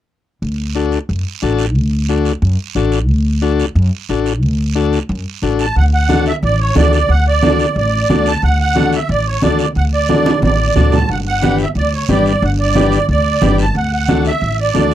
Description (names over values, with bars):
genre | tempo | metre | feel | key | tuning
latin, cumbia | 180 BPM | 4/4 | straight | D major | A4 = 438 Hz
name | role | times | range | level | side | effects
upright bass | bass | 0.4-14.9 s | G1 to F#2 | -15 LUFS | equal | none
guiro | percussion | 0.4-14.9 s | none | -30 LUFS | right 12 dB | none
combo organ | accompaniment | 0.8-14.9 s | D4 to B4 | -17 LUFS | left 8 dB | none
musette accordion | melody | 5.6-14.9 s | C#5 to A5 | -17 LUFS | right 3 dB | none
congas | percussion | 5.8-14.9 s | none | -18 LUFS | right 3 dB | none
room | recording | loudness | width
light reverb | dry, close 1970s-style studio recording | -12 LUFS | side -12 dB against mid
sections
0.4-5.8 A section; 5.8-14.9 B section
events
drum fill 10.1-11.1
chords
0.4 D; 11.1 G; 13.8 D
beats
| 0.42 0.76 1.09 1.42 | 1.76 2.09 2.42 2.76 | 3.09 3.43 3.76 4.09 | 4.43 4.76 5.10 5.43 | 5.76 6.10 6.43 6.76 | 7.10 7.43 7.76 8.10 | 8.43 8.76 9.09 9.43 | 9.76 10.09 10.43 10.76 | 11.09 11.43 11.76 12.09 | 12.42 12.76 13.09 13.42 | 13.75 14.09 14.42 14.75